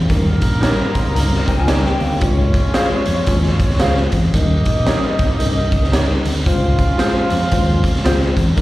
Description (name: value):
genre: uptempo 1960s-style soul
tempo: 113 BPM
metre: 4/4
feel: swing 61% on 8ths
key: unclear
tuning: A4 = 441 Hz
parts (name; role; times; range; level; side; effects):
- hollow-body short-scale fingered electric bass; bass; 0.0-8.6 s; Bb1 to F2; -18 LUFS; equal; none
- warm horn section; second line; 0.1-8.6 s; G3 to F5; -24 LUFS; right 1 dB; slapback echo
- mellow tine electric piano; accompaniment; 0.1-8.6 s; G3 to C6; -22 LUFS; left 2 dB; medium stereo tremolo, slapback echo
- raw garage drum kit; drums; 0.1-8.6 s; hi-hat, kick drum, snare drum; -18 LUFS; equal; none
- mellow electric guitar; stabs; 0.6-8.2 s; Eb4 to F5; -24 LUFS; right 2 dB; wide subtle chorus, slapback echo
- electric guitar through a small old amp; riff; 1.5-2.2 s; Eb3 to G4; -24 LUFS; left 3 dB; harmonic tremolo, slapback echo
room: studio ambience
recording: live gig heard through the venue's PA, recital hall reverb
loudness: -14 LUFS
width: side -17 dB against mid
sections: 0.0-8.6 A section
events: tine electric piano fill 0.6-2.2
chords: 0.1 Eb7; 2.2 Dbmaj7; 4.3 Eb7; 6.5 Dbmaj7